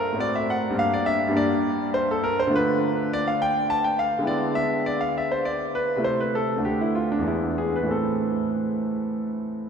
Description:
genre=classical, baroque-style suite movement for grand piano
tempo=89-105 BPM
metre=3/4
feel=rubato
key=A minor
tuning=A4 = 439 Hz
part: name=bright concert grand piano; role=solo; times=0.0-9.7 s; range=D2 to A5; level=-22 LUFS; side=equal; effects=none
room=wet cathedral reverb, RT60 4.7 s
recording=recorded in a church or concert hall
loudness=-22 LUFS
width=side -6 dB against mid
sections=0.0-9.7 A section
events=none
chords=0.2 F#dim/A; 0.8 Gm; 2.5 Bm7b5/D; 4.3 E7/D; 6.0 Am/C; 6.6 D5; 7.3 E7; 7.9 Am

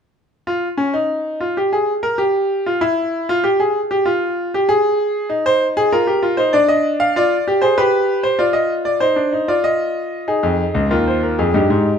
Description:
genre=classical, baroque-style 4-part fugue for grand piano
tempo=96 BPM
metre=4/4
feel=straight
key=F minor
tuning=A4 = 441 Hz
part: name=bright concert grand piano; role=solo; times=0.5-12.0 s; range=Db2 to F5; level=-15 LUFS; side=equal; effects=none
room=moderate large studio reverb, RT60 1.3 s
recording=minimal, uncompressed stereo recording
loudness=-15 LUFS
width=side -7 dB against mid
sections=0.3-10.3 A section; 10.3-12.0 B section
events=none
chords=0.3 N.C.; 5.3 Cm/Eb; 6.5 Dm7; 7.8 G; 9.0 Cm; 10.3 Fm

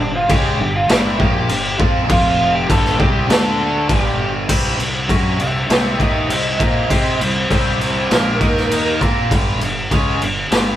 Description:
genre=quiet-loud alternative rock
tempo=100 BPM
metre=4/4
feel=straight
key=unclear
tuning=A4 = 440 Hz
part: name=biting lead guitar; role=melody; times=0.0-9.0 s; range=D4 to A5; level=-20 LUFS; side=equal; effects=overdrive
part: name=crunchy overdriven guitar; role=riff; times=0.0-4.5 s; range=F2 to F4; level=-27 LUFS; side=equal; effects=none
part: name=distorted electric guitar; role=riff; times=0.0-10.8 s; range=F2 to C5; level=-24 LUFS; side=right 6 dB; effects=overdrive
part: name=overdriven semi-hollow guitar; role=riff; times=0.0-10.8 s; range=F2 to C5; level=-25 LUFS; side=left 6 dB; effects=none
part: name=fuzz fingered electric bass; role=bass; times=0.0-10.8 s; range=F1 to C3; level=-24 LUFS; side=equal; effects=overdrive
part: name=raw garage drum kit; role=drums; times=0.3-10.7 s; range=crash cymbal, kick drum, snare drum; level=-17 LUFS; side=equal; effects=none
part: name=twangy electric guitar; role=arpeggios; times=4.5-9.3 s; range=C3 to Bb4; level=-27 LUFS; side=left 4 dB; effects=none
room=moderate studio ambience, RT60 0.5 s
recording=band playing live in one room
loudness=-14 LUFS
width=side -12 dB against mid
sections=0.0-4.5 A section; 4.5-10.8 B section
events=lead electric guitar solo 4.5-10.8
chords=0.0 G5; 2.1 F5; 2.7 G5; 3.3 D5; 3.9 G5; 4.5 Cadd9; 8.4 Eb5; 9.0 Cadd9; 9.3 G5

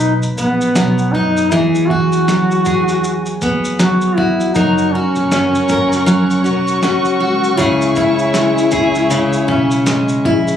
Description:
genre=acoustic pop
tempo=79 BPM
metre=4/4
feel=swing 60% on 16ths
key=unclear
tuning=A4 = 440 Hz
part: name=mellow duduk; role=melody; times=0.0-10.2 s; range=B3 to F#4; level=-16 LUFS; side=left 1 dB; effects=none
part: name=picked steel-string acoustic guitar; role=accompaniment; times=0.0-10.6 s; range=C#3 to B4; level=-15 LUFS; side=equal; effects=none
part: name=upright bass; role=bass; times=0.0-10.6 s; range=E1 to F#2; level=-24 LUFS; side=right 1 dB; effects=none
part: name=dusty soul sampler-style drum kit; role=drums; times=0.0-10.6 s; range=kick drum, shaker, snare drum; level=-23 LUFS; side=right 1 dB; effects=overdrive
part: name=dark studio string section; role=sustained chords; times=4.6-10.6 s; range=G#4 to C#6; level=-23 LUFS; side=equal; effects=none
room=light reverb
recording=recorded on a phone in the room, club reverb, compression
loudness=-12 LUFS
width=side -9 dB against mid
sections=0.0-10.6 A section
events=none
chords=0.0 B; 1.5 Eadd9; 4.6 F#; 7.6 C#m

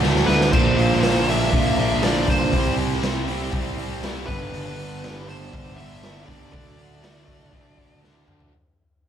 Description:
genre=quiet-loud alternative rock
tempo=120 BPM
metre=4/4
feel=straight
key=unclear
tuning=A4 = 440 Hz
part: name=distorted electric guitar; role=riff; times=0.0-8.5 s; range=G2 to D4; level=-30 LUFS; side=left 2 dB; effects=distortion
part: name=high-gain distorted guitar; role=riff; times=0.0-8.5 s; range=G2 to E4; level=-31 LUFS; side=left 10 dB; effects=distortion
part: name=overdriven electric guitar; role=riff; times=0.0-8.5 s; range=G2 to E4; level=-27 LUFS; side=right 10 dB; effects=none
part: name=fuzz fingered electric bass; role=bass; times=0.0-8.5 s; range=G1 to G2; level=-26 LUFS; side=equal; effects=overdrive
part: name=raw garage drum kit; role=drums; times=0.0-8.5 s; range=crash cymbal, hi-hat, kick drum, snare drum, toms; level=-24 LUFS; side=left 1 dB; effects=none
part: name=smooth overdriven lead guitar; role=melody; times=0.3-8.0 s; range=B4 to E5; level=-26 LUFS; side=equal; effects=none
room=light reverb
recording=band playing live in one room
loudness=-18 LUFS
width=side -9 dB against mid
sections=0.0-8.5 A section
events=fade-out 0.0-8.5; drum fill 0.0-0.5, 8.0-8.5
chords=0.0 D; 0.5 Bbadd9; 2.5 C; 4.3 G; 6.5 D

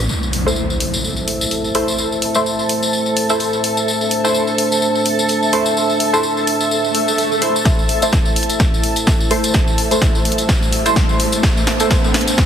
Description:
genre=bass house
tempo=127 BPM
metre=4/4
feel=swing 56% on 16ths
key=A minor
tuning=A4 = 440 Hz
part: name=dark analog pad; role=sustained chords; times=0.0-12.5 s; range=A3 to C5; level=-22 LUFS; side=equal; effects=lush chorus, sidechain pumping
part: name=tambourine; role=percussion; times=0.1-12.5 s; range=none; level=-23 LUFS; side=left 2 dB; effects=none
part: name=impact, swell and riser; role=sound effects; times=0.1-2.0, 6.9-12.5 s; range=none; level=-25 LUFS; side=right 1 dB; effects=none
part: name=granular cloud pad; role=texture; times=1.1-12.5 s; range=A4 to A5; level=-21 LUFS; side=equal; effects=built-in reverb, sidechain pumping
part: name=house drum kit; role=drums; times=0.3-12.5 s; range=hi-hat, snare drum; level=-21 LUFS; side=left 1 dB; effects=high-pass filter on hats, studio reverb, high-pass filter on snare
part: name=band-passed chord stab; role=stabs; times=0.5-12.0 s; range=A3 to C5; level=-21 LUFS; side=right 1 dB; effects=phaser, wide subtle chorus, sidechain pumping, tape echo
part: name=electronic kick drum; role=drums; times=7.7-12.5 s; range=none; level=-16 LUFS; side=equal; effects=studio reverb
room=moderate lush hall reverb, RT60 2.4 s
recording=heavily compressed radio sound, multiband compression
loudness=-14 LUFS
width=side -8 dB against mid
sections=0.1-7.7 A section; 7.7-12.5 B section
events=impact 0.1-2.0; filter sweep on synth stab 0.1-7.7; swell 6.9-7.7; build-up 7.7-12.5; drum fill 7.7-12.5; riser 9.5-12.5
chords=0.1 Am

